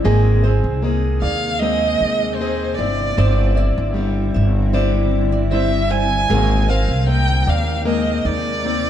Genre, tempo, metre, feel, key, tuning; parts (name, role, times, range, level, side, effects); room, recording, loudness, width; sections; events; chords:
pop; 77 BPM; 4/4; straight; A4 = 442 Hz
picked plugged-in steel-string acoustic guitar; accompaniment; 0.0-8.9 s; G3 to Eb5; -22 LUFS; left 4 dB
granular cloud pad; sustained chords; 0.0-8.9 s; C3 to E4; -28 LUFS; right 1 dB; built-in reverb
flamenco guitar; arpeggios; 0.0-8.8 s; Eb4 to E5; -28 LUFS; right 8 dB; tape echo
upright bass; bass; 0.1-8.9 s; G1 to Eb2; -18 LUFS; equal
warm violin; melody; 1.2-8.9 s; C5 to Ab5; -21 LUFS; right 2 dB; tape echo
light reverb; dark, warm production; -15 LUFS; side -10 dB against mid
0.0-8.9 A section
0.0 Abadd9; 2.8 Cadd9/G; 6.3 Abadd9